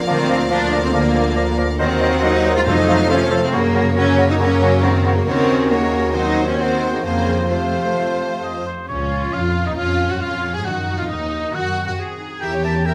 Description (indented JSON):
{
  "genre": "classical, dramatic, fast romantic movement for symphony orchestra",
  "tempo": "137 BPM",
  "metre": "4/4",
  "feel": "rubato",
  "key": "Bb minor",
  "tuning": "A4 = 441 Hz",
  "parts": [
    { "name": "rich studio violin section", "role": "melody", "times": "0.0-12.9 s", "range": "Db4 to Gb5", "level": "-32 LUFS", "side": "equal", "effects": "none" },
    { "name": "rich symphonic violin section", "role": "second line", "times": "0.0-12.9 s", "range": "Db4 to D5", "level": "-32 LUFS", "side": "equal", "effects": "none" },
    { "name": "bright symphonic viola section", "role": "accompaniment", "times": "0.0-12.9 s", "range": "C3 to Ab4", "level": "-29 LUFS", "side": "equal", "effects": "none" },
    { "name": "mellow French horn section", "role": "sustained chords", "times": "0.0-8.6 s", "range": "F4 to D5", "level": "-27 LUFS", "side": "equal", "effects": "none" },
    { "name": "warm trombone section", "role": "sustained chords", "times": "0.0-8.7 s", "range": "C3 to Db4", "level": "-29 LUFS", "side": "equal", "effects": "none" },
    { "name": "concert harp", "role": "arpeggios", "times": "0.0-12.9 s", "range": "F2 to C5", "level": "-30 LUFS", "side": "equal", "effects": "none" },
    { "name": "clear symphonic cello section", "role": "bass", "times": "0.0-12.9 s", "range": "A3 to Bb4", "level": "-24 LUFS", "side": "equal", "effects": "none" },
    { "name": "rich symphonic double bass section", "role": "bass", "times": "0.0-12.9 s", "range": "Db2 to Ab2", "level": "-25 LUFS", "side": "equal", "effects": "none" },
    { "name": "mellow silver concert flute", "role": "second line", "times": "0.1-8.6 s", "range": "Eb5 to Gb5", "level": "-30 LUFS", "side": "equal", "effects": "none" },
    { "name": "warm clarinet", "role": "second line", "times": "0.1-8.6 s", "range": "A4 to C5", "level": "-30 LUFS", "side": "equal", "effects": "none" },
    { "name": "warm oboe", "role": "second line", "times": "0.1-12.9 s", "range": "C5 to A5", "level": "-30 LUFS", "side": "equal", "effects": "none" },
    { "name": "warm bassoon", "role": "accompaniment", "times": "0.1-8.6 s", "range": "Db3 to Gb3", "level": "-29 LUFS", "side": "equal", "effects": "none" },
    { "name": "timpani", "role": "percussion", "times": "2.7-3.3 s", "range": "F2", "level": "-32 LUFS", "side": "equal", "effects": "none" }
  ],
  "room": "moderate scoring stage reverb, RT60 1.7 s",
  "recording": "none",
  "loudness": "-18 LUFS",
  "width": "mono",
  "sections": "0.0-8.9 A section; 8.9-12.9 B section",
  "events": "none",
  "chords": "0.1 Bb/D; 1.8 Cm7b5/Eb; 2.7 F; 3.5 Gb; 5.3 Ebm7; 7.1 F; 8.9 Bbm/Db; 10.7 Cdim; 12.4 Edim7"
}